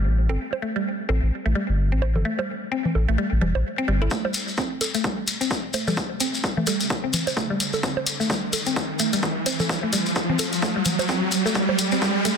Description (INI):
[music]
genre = minimal techno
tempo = 129 BPM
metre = 4/4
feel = swing 58% on 16ths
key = A minor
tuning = A4 = 440 Hz
[part]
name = saturated sub bass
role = bass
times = 0.0-4.1 s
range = E1 to A1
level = -21 LUFS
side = equal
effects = tube saturation, sidechain pumping
[part]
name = mallet-like synth pluck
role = riff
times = 0.3-12.3 s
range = G3 to E4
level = -26 LUFS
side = equal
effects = chorus, sidechain pumping, digital delay
[part]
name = bongos and congas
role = percussion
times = 0.3-12.4 s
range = none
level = -30 LUFS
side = right 2 dB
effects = ping-pong delay
[part]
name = electronic kick drum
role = drums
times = 4.1-12.1 s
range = none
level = -27 LUFS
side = equal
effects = high-pass filter on kick, high-pass filter on room
[part]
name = shekere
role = percussion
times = 4.1-12.4 s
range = none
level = -28 LUFS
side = left 4 dB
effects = none
[part]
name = riser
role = sound effects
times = 5.5-12.4 s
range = none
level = -26 LUFS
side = right 2 dB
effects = none
[part]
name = electronic hi-hat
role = drums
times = 4.3-12.4 s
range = none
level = -28 LUFS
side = left 2 dB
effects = none
[sound]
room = moderate lush hall reverb, RT60 1.7 s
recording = dense, heavily limited modern master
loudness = -21 LUFS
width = side -6 dB against mid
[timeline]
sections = 0.0-4.1 A section; 4.1-12.4 B section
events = filter sweep on synth arpeggio sound 0.0-4.1; build-up 4.1-12.4; riser 5.5-12.4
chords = 0.0 N.C.; 4.1 Am